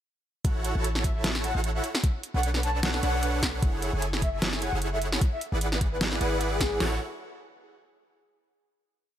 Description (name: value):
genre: future bass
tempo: 151 BPM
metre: 4/4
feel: swing 55% on 16ths, half-time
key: A major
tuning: A4 = 439 Hz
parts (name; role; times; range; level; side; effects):
- supersaw chords; riff; 0.4-7.0 s; D4 to A5; -32 LUFS; right 1 dB; sidechain pumping
- warm 808-style bass; bass; 0.4-7.0 s; F#1 to B1; -30 LUFS; equal; sidechain pumping
- dubstep drum kit; drums; 0.4-6.9 s; hi-hat, kick drum, snare drum; -26 LUFS; equal; none
- dubstep drum kit; drums; 0.4-6.7 s; hi-hat, snare drum; -30 LUFS; equal; none
- breathy flute-like synth lead; melody; 1.0-6.8 s; G#4 to A5; -34 LUFS; left 1 dB; analog chorus, sidechain pumping, tape echo
room: digital ambience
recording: none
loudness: -25 LUFS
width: side -11 dB against mid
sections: 0.4-6.8 drop; 6.8-8.4 final chord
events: drop 0.4-6.8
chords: 0.4 A6; 1.8 Bm9; 3.6 F#m9; 5.2 E9/G#; 6.8 A6